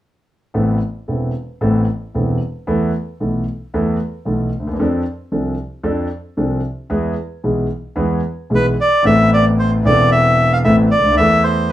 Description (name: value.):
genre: tango.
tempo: 113 BPM.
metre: 4/4.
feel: rubato.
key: A harmonic minor.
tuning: A4 = 441 Hz.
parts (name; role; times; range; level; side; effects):
warm concert grand piano; accompaniment; 0.5-11.7 s; E1 to A4; -16 LUFS; equal; none.
bandoneon; melody; 8.6-11.7 s; B4 to F5; -14 LUFS; equal; none.
room: wet studio ambience, RT60 0.5 s.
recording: band playing live in one room.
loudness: -15 LUFS.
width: side -13 dB against mid.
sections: 0.5-9.0 A section; 9.0-11.7 B section.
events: none.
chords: 0.5 Amadd9; 2.7 Esus4; 4.8 F6; 6.9 E; 9.0 Amadd9; 11.2 Esus4.